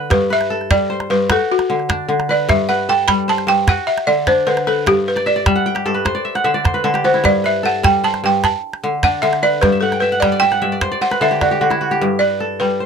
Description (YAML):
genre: west african traditional, West African string and xylophone music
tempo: 101 BPM (dotted quarters)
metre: 12/8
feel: straight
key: G major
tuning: A4 = 440 Hz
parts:
  - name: kora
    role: arpeggios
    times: 0.0-12.9 s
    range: G2 to G5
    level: -18 LUFS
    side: left 1 dB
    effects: none
  - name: balafon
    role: melody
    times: 0.1-12.9 s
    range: F#4 to B5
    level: -16 LUFS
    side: right 1 dB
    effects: none
  - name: calabash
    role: percussion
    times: 0.1-12.0 s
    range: none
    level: -19 LUFS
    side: right 2 dB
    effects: none
room: light reverb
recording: none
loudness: -14 LUFS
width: side -6 dB against mid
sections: 0.0-12.0 A section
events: balafon solo 0.0-12.0; kora fill 5.2-7.2, 9.7-12.0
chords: 0.1 G; 1.3 D; 2.5 G; 3.7 D; 4.9 G; 6.1 N.C.; 7.2 G; 8.4 D5; 9.6 G; 10.8 N.C.; 12.0 G